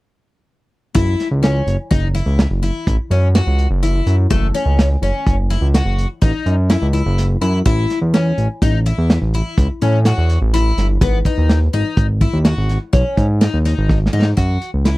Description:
progressive instrumental, band music in an uneven meter; 125 BPM; 7/4; straight; F# dorian; A4 = 440 Hz
picked twelve-string acoustic guitar; arpeggios; 0.9-15.0 s; A3 to F#4; -22 LUFS; left 4 dB
smooth synth bass; bass; 1.0-15.0 s; F#1 to A2; -15 LUFS; equal
vintage drum kit; drums; 1.0-15.0 s; hi-hat, kick drum, snare drum; -17 LUFS; equal
little or no reverb; dry, close 1970s-style studio recording; -14 LUFS; side -19 dB against mid
0.9-14.4 A section
drum fill 13.9-14.4
0.9 F#7(no3); 7.7 A; 11.0 G#5; 14.4 F#7(no3)

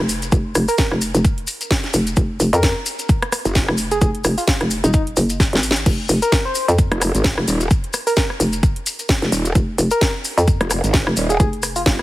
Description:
bass house; 130 BPM; 4/4; swing 57% on 16ths; F phrygian; A4 = 440 Hz
hollow knocking FM bass; bass; 0.0-11.8 s; Eb1 to F2; -19 LUFS; equal; overdrive, sidechain pumping
house drum kit; drums; 0.1-12.0 s; crash cymbal, hi-hat, rim click, snare drum; -22 LUFS; equal
maracas; percussion; 0.1-12.0 s; -27 LUFS; left 4 dB
electronic kick drum; drums; 0.3-12.0 s; -17 LUFS; equal
soft struck synth lead; melody; 0.7-11.9 s; Eb4 to C5; -24 LUFS; equal; chorus, tape echo
growl bass; bass; 3.5-3.7, 6.9-12.0 s; Eb1 to Ab1; -19 LUFS; equal; chorus, sidechain pumping
digital ambience; heavily compressed radio sound, multiband compression; -16 LUFS; side -17 dB against mid
0.0-5.9 A section; 5.9-12.0 A section
drop 0.0-5.9, 5.9-12.0; drum fill 5.4-5.9

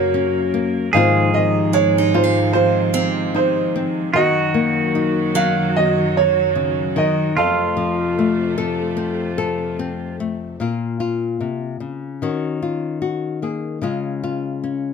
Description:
acoustic folk-pop ballad; 75 BPM; 4/4; straight; Bb minor; A4 = 439 Hz
clear upright piano; melody; 0.0-9.8 s; F4 to F5; -19 LUFS; right 4 dB
pedal steel guitar; second line; 0.0-10.2 s; F4 to Bb4; -24 LUFS; right 4 dB
nylon-string guitar; accompaniment; 0.0-14.9 s; F2 to A4; -21 LUFS; left 5 dB
warm chamber string section; sustained chords; 0.0-10.6 s; Gb2 to Bb3; -25 LUFS; right 2 dB
picked steel-string acoustic guitar; arpeggios; 1.7-7.6 s; Gb3 to F5; -24 LUFS; right 4 dB
light reverb; close, detailed microphones; -17 LUFS; side -6 dB against mid
0.0-10.6 A section; 10.6-14.9 B section
0.0 Gb; 0.9 Ab6; 4.1 Ebm; 7.4 F; 10.6 Bbm; 12.2 Ebm7; 13.8 Db

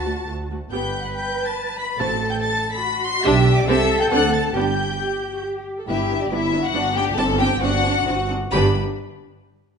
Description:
quick classical-period movement for string orchestra; 126-143 BPM; 3/4; rubato; G major; A4 = 440 Hz
warm chamber violin section; melody; 0.0-8.8 s; D5 to C7; -26 LUFS; left 3 dB
warm chamber violin section; second line; 0.0-8.8 s; D4 to C6; -26 LUFS; left 4 dB
clear chamber double bass section; bass; 0.0-8.8 s; G1 to D2; -24 LUFS; right 3 dB
dark chamber cello section; bass; 0.0-8.8 s; G2 to B4; -25 LUFS; equal
dark chamber viola section; accompaniment; 0.1-8.8 s; A3 to A4; -24 LUFS; right 2 dB
moderate recital hall reverb, RT60 1.4 s; nothing above 11.0 kHz; -18 LUFS; side -6 dB against mid
0.0-5.9 A section; 5.9-8.5 B section; 8.5-9.8 C section
slowing down 5.2-8.5
0.0 D; 0.7 G; 2.0 F#dim/A; 3.2 G/B; 3.7 C; 4.1 D7; 4.6 G; 7.2 D7/G; 8.5 G5

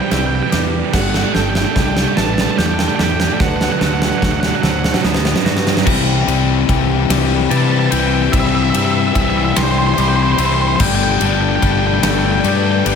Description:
post-rock; 49 BPM (dotted quarters); 6/8; straight; A4 = 440 Hz
octave-fuzz lead guitar; melody; 0.0-13.0 s; C5 to A5; -21 LUFS; right 4 dB; distortion, analog delay
clear studio string section; sustained chords; 0.0-13.0 s; B2 to E5; -28 LUFS; left 1 dB
twangy electric guitar; arpeggios; 0.0-13.0 s; C3 to G4; -27 LUFS; left 3 dB; spring reverb, analog delay
vibraphone with soft mallets; arpeggios; 0.0-13.0 s; A4 to B5; -28 LUFS; right 5 dB; analog delay
overdriven electric guitar; riff; 0.0-5.9 s; C3 to A3; -21 LUFS; right 14 dB; tremolo
fuzz fingered electric bass; bass; 0.1-13.0 s; G1 to C3; -19 LUFS; equal; overdrive
huge arena drum kit; drums; 0.1-13.0 s; crash cymbal, kick drum, ride cymbal, snare drum; -18 LUFS; equal
crunchy overdriven guitar; riff; 5.9-13.0 s; C3 to G4; -17 LUFS; left 14 dB
light reverb, studio ambience; -13 LUFS; side -6 dB against mid
0.0-5.9 A section; 5.9-13.0 B section
build-up 0.0-5.9; drum fill 0.0-5.9
0.0 C; 0.9 Gsus2; 3.4 D6; 5.9 C; 10.8 Gsus2

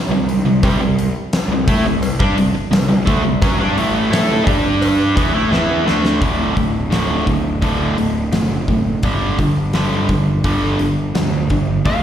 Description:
classic rock; 86 BPM; 4/4; straight; D mixolydian; A4 = 440 Hz
sludgy distorted guitar; riff; 0.1-12.0 s; D2 to A4; -17 LUFS; right 1 dB; overdrive, slapback echo
fuzz picked electric bass; bass; 0.1-12.0 s; D1 to A2; -21 LUFS; equal; overdrive
huge arena drum kit; drums; 0.3-12.0 s; hi-hat, kick drum, snare drum; -20 LUFS; equal
cowbell; percussion; 0.6-5.7 s; -31 LUFS; left 1 dB
biting overdriven guitar; second line; 11.9-12.0 s; F5; -19 LUFS; left 2 dB
light reverb, small room ambience; live gig heard through the venue's PA, recital hall reverb; -14 LUFS; side -10 dB against mid
0.0-6.2 A section; 6.2-12.0 B section
drum fill 5.5-6.2
0.0 C5; 4.5 G5; 5.2 Dsus2; 6.2 D; 9.0 G5

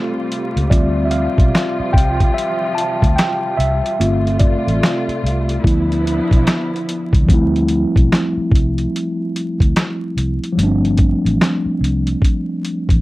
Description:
lo-fi hip hop; 73 BPM; 4/4; swing 64% on 16ths; D dorian; A4 = 440 Hz
mellow tine electric piano; accompaniment; 0.0-13.0 s; E3 to A5; -18 LUFS; equal; medium stereo tremolo, low-pass filter
muted studio string section; sustained chords; 0.0-7.3 s; C3 to F4; -25 LUFS; equal; low-pass filter
lo-fi sampler-style drum kit; drums; 0.3-13.0 s; handclaps, hi-hat, kick drum, snare drum; -15 LUFS; equal
vintage muted fingered electric bass; bass; 0.6-13.0 s; G1 to D2; -19 LUFS; equal
light reverb; vinyl crackle; -14 LUFS; side -19 dB against mid
0.0-7.3 A section; 7.3-13.0 B section
tine electric piano solo 0.0-7.3
0.0 G9sus4; 0.7 Dm11; 4.0 G9sus4; 5.6 Dm69; 7.3 Dm11; 10.6 G9sus4

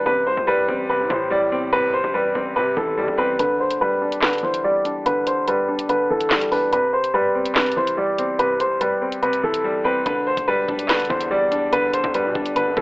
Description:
hip hop, drill; 144 BPM; 4/4; half-time; E minor; A4 = 440 Hz
dark upright piano; melody; 0.0-12.8 s; A4 to D5; -20 LUFS; equal; low-pass filter
dark grand piano; accompaniment; 0.0-12.8 s; C3 to D4; -24 LUFS; left 1 dB; low-pass filter
distorted 808-style bass; bass; 0.0-3.4, 10.1-12.8 s; E1 to C3; -30 LUFS; equal; distortion
drill drum kit; drums; 3.4-12.8 s; handclaps, hi-hat, kick drum, snare drum; -23 LUFS; equal
impact; sound effects; 3.4-5.1 s; -45 LUFS; equal
moderate digital room reverb, RT60 1.2 s; telephone sound; -18 LUFS; side -23 dB against mid
0.0-3.4 A section; 3.4-12.8 B section
kick muted 3.4-10.1; impact 3.4-5.1; filter sweep 3.4-10.1; silent gap 9.6-10.1
0.1 Am7; 3.4 Em7; 6.7 Am7 (rootless); 10.1 Em7

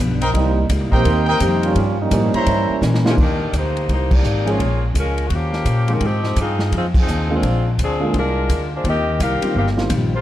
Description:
jazz, big band swing; 169 BPM; 4/4; swing 64% on 8ths; C minor from 3.2 s; A4 = 440 Hz
picked steel-string acoustic guitar; accompaniment; 0.0-3.1, 8.8-10.1 s; G2 to F4; -26 LUFS; left 2 dB
upright bass; bass; 0.0-10.2 s; G1 to Bb2; -20 LUFS; equal
bright trumpet section; stabs; 0.2-2.8 s; Bb4 to Bb5; -22 LUFS; equal
swinging big-band drum kit; drums; 0.2-10.0 s; crash cymbal, hi-hat, kick drum, ride cymbal, snare drum; -23 LUFS; equal
warm trombone section; second line; 0.3-3.1 s; Eb3 to G4; -22 LUFS; right 4 dB
warm concert grand piano; accompaniment; 1.4-9.9 s; D3 to Ab4; -24 LUFS; equal
bright saxophone section; melody; 3.1-10.2 s; E3 to F5; -22 LUFS; left 2 dB
light reverb; dark, warm production; -16 LUFS; side -13 dB against mid
0.0-3.2 A section; 3.2-10.2 B section
trombone section solo 0.0-3.2; drum fill 2.8-3.2; band accent 4.1, 6.9
0.3 Cm7; 1.8 Gm7b5; 2.5 C7b9; 3.2 Cm9; 4.6 Bbm7; 5.3 Eb13; 6.0 Ab6; 7.4 Bb9; 8.8 Eb69

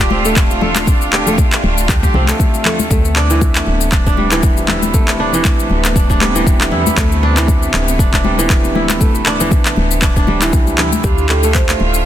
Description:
afro house; 118 BPM; 4/4; swing 56% on 16ths; A4 = 440 Hz
bright symphonic string section; sustained chords; 0.0-12.1 s; C3 to E5; -21 LUFS; right 2 dB; sidechain pumping
kora; arpeggios; 0.0-12.1 s; E3 to A4; -18 LUFS; right 1 dB; vintage 12-bit sampler grit, sidechain pumping, ping-pong delay
woody FM bass; bass; 0.0-12.1 s; D1 to E2; -18 LUFS; equal; sidechain pumping
electronic handclaps and shaker; drums; 0.0-12.0 s; -18 LUFS; left 1 dB
electronic kick drum; drums; 0.0-11.7 s; -14 LUFS; equal
congas; percussion; 0.1-11.9 s; -22 LUFS; left 4 dB
marimba with medium mallets; melody; 11.0-12.1 s; G4 to C5; -20 LUFS; right 4 dB
light reverb, small room ambience; dense, heavily limited modern master; -11 LUFS; side -11 dB against mid
0.0-12.1 A section
0.0 Dm7; 2.9 Amadd9/D; 11.0 Dm7

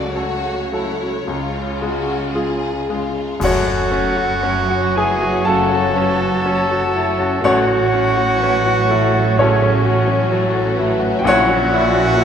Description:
classical, romantic movement for piano and orchestra; 52-65 BPM; 4/4; rubato; F# minor; A4 = 440 Hz
clear baby grand piano; melody; 0.0-12.2 s; A1 to A5; -19 LUFS; left 2 dB
warm symphonic violin section; melody; 0.0-12.2 s; F#4 to D5; -32 LUFS; left 1 dB
rich studio violin section; second line; 0.0-12.2 s; A3 to A4; -28 LUFS; left 4 dB
warm symphonic viola section; accompaniment; 0.0-12.2 s; F#3 to F#4; -28 LUFS; right 2 dB
rich symphonic double bass section; bass; 0.0-12.2 s; F#1 to C#2; -25 LUFS; right 4 dB
warm symphonic cello section; bass; 0.0-12.2 s; F#2 to C#3; -24 LUFS; right 2 dB
silver concert flute; second line; 3.4-12.2 s; C#5 to A5; -24 LUFS; left 2 dB
warm clarinet; second line; 3.4-12.2 s; F#4 to D5; -28 LUFS; left 2 dB
warm oboe; second line; 3.4-12.2 s; C#5 to E5; -27 LUFS; right 2 dB
warm bassoon; accompaniment; 3.4-12.2 s; F#3; -27 LUFS; right 2 dB
dark trombone section; sustained chords; 3.4-11.6 s; C#3 to F#3; -29 LUFS; right 3 dB
mellow French horn section; sustained chords; 3.4-11.6 s; C#4 to F#4; -28 LUFS; left 4 dB
bright trumpet; stabs; 3.4-12.2 s; C#4 to A4; -23 LUFS; right 4 dB
clash cymbals and concert bass drum; percussion; 3.4-5.4 s; -28 LUFS; equal
wet scoring stage reverb, RT60 1.7 s; -15 LUFS; side -8 dB against mid
0.0-3.4 A section; 3.4-12.2 B section
band accent 3.4-4.4
0.0 F#m/C#; 1.3 C#; 3.4 F#m; 7.4 F#m/A; 11.2 F#7/A#

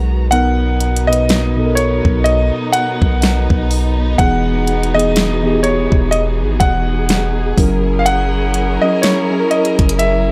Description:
contemporary R&B; 62 BPM; 4/4; swing 58% on 16ths; B major; A4 = 440 Hz
muted felt-like synth keys; accompaniment; 0.0-10.3 s; B2 to B4; -21 LUFS; equal; chorus
warm studio string section; sustained chords; 0.0-10.3 s; E3 to A#5; -25 LUFS; equal
long sustained 808-style bass; bass; 0.0-10.3 s; E1 to B1; -20 LUFS; equal
clear grand piano; melody; 0.3-10.3 s; C#5 to F#5; -20 LUFS; equal; analog delay
smooth R&B drum kit; drums; 0.3-10.3 s; hi-hat, kick drum, snare drum; -18 LUFS; equal
digital ambience; dry, gritty hardware recording; -15 LUFS; mono
0.0-10.3 A section
0.3 Bmaj7; 4.2 Emaj7; 7.6 F#7

